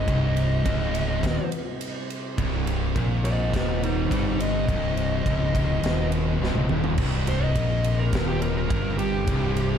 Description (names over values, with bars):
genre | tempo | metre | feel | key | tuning
stoner and doom metal | 104 BPM | 4/4 | straight | C phrygian | A4 = 441 Hz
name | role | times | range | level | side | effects
fuzz lead guitar | melody | 0.0-9.8 s | Eb4 to Eb5 | -30 LUFS | equal | distortion, tape echo
mellow tonewheel organ | sustained chords | 0.0-9.8 s | C3 to C4 | -38 LUFS | right 2 dB | none
distorted electric guitar | riff | 0.0-9.8 s | C2 to Bb2 | -32 LUFS | right 1 dB | overdrive
thick fuzz guitar | riff | 0.0-9.8 s | C2 to Bb2 | -28 LUFS | left 7 dB | distortion
thick fuzz guitar | riff | 0.0-9.8 s | C2 to Bb2 | -31 LUFS | right 8 dB | distortion
fuzz fingered electric bass | bass | 0.0-9.8 s | C1 to Bb1 | -28 LUFS | equal | overdrive
big rock drum kit | drums | 0.1-9.7 s | crash cymbal, kick drum, ride cymbal, snare drum, toms | -29 LUFS | equal | none
room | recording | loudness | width
light reverb, small room ambience | dark, warm production | -22 LUFS | side -8 dB against mid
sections
0.0-9.8 A section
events
lead electric guitar solo 0.0-9.8; drum fill 6.4-7.0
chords
0.0 Cm